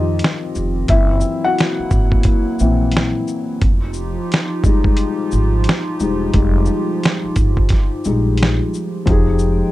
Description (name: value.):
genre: lo-fi hip hop.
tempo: 88 BPM.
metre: 4/4.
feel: swing 62% on 16ths.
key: F minor.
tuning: A4 = 440 Hz.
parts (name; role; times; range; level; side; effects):
felt-muted upright piano; accompaniment; 0.0-9.7 s; Fb3 to Gb5; -20 LUFS; left 4 dB; plate reverb.
hollow soft pad; sustained chords; 0.0-9.7 s; Eb3 to G5; -24 LUFS; right 2 dB; chorus, plate reverb.
upright bass; bass; 0.0-9.6 s; E1 to F2; -19 LUFS; equal; none.
dusty soul sampler-style drum kit; drums; 0.2-9.6 s; hi-hat, kick drum, shaker, snare drum; -16 LUFS; equal; none.
room: moderate studio ambience, RT60 0.5 s.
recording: dark, warm production.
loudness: -14 LUFS.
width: side -16 dB against mid.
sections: 0.0-9.1 A section.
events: felt piano solo 0.0-9.1.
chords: 0.0 Eb69; 0.9 Gb7#11; 3.6 Fm9.